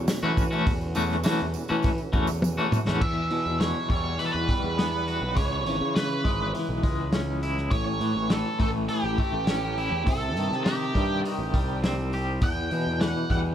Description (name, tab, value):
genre	psychedelic rock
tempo	102 BPM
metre	4/4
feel	straight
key	E dorian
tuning	A4 = 439 Hz
part	mellow tonewheel organ	sustained chords	0.0-3.0 s	C#4 to C#5	-38 LUFS	right 4 dB	chorus vibrato, slow rotary speaker
part	fuzz picked electric bass	bass	0.0-13.5 s	G#1 to E3	-29 LUFS	equal	overdrive
part	metallic inharmonic drone	drone	0.0-3.1 s	E2 to B2	-44 LUFS	right 2 dB	none
part	vintage drum kit	drums	0.1-13.4 s	crash cymbal, hi-hat, kick drum, snare drum, toms	-27 LUFS	equal	none
part	tambourine	percussion	0.1-3.0 s	none	-44 LUFS	right 14 dB	none
part	twangy electric guitar	riff	0.2-13.5 s	E2 to G4	-29 LUFS	left 2 dB	tremolo
part	octave-fuzz lead guitar	melody	3.0-13.4 s	G4 to G5	-30 LUFS	right 2 dB	wah, distortion, analog delay
room	light reverb, studio ambience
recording	none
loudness	-23 LUFS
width	side -10 dB against mid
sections	0.0-3.0 A section; 3.0-13.5 B section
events	drum fill 2.4-3.0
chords	0.0 F#m/E; 3.0 Emadd9; 5.4 C#m; 7.7 A; 10.1 Cm; 12.4 Emadd9